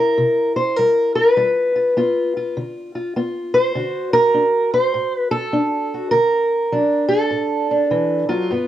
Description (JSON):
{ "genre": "acoustic country blues, solo or duo", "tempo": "101 BPM", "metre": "4/4", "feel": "swing 65% on 8ths", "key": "unclear", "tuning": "A4 = 440 Hz", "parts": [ { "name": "fingerpicked steel-string acoustic guitar", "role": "solo", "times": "0.0-8.7 s", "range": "G2 to C5", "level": "-16 LUFS", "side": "equal", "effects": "none" } ], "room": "moderate spring reverb, RT60 1.2 s, small room reverb", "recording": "home recording on cassette", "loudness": "-16 LUFS", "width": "side -12 dB against mid", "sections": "0.0-8.7 A section", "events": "none", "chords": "0.0 C7; 1.4 G7; 3.7 D7" }